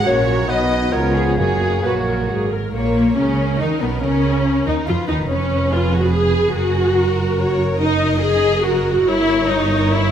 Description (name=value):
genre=quick classical-period movement for symphony orchestra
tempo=141 BPM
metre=3/4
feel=rubato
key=F# major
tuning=A4 = 440 Hz
part: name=rich chamber violin section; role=melody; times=0.0-10.1 s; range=A#3 to D#5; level=-26 LUFS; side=left 2 dB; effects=none
part: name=dark clarinet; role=second line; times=0.0-2.5 s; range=E#4 to F#4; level=-28 LUFS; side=equal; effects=none
part: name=mellow hollow small flute group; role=second line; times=0.0-2.3 s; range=F#4 to D#5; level=-27 LUFS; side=left 3 dB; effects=none
part: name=warm symphonic violin section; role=second line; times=0.0-10.1 s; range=F#4 to D#5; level=-27 LUFS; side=left 2 dB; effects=none
part: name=warm symphonic viola section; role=accompaniment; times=0.0-10.1 s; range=A#3 to B4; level=-19 LUFS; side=equal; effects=none
part: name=dark chamber double bass section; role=bass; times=0.0-10.1 s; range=E#1 to E#2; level=-23 LUFS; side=right 2 dB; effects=none
part: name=warm chamber cello section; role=bass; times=0.0-10.1 s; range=E#2 to E#3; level=-23 LUFS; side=right 2 dB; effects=none
part: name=clear oboe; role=second line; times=0.1-2.5 s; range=B4 to C#5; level=-28 LUFS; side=right 2 dB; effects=none
part: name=warm bassoon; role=accompaniment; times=0.1-2.5 s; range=A#3 to B3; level=-27 LUFS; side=right 2 dB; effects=none
part: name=dark French horn section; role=sustained chords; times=0.1-2.5 s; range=E#3 to C#4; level=-27 LUFS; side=left 3 dB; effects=none
part: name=timpani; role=percussion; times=1.4-2.0 s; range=F#2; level=-32 LUFS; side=equal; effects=none
room=moderate scoring stage reverb, RT60 2.1 s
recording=none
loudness=-15 LUFS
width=side -9 dB against mid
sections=0.0-2.7 A section; 2.7-10.1 A section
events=none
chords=0.1 F#/A#; 0.5 B; 0.9 C#7; 1.4 F#; 2.7 Bmaj9/A#; 4.0 C#13; 5.3 C#7/E#; 6.6 F#; 9.1 Gdim7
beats=| 0.06 0.48 0.92 | 1.37 1.83 2.28 | 2.73 3.17 3.60 | 4.03 4.46 4.88 | 5.30 5.72 6.14 | 6.56 6.97 7.39 | 7.80 8.21 8.64 | 9.06 9.49 9.91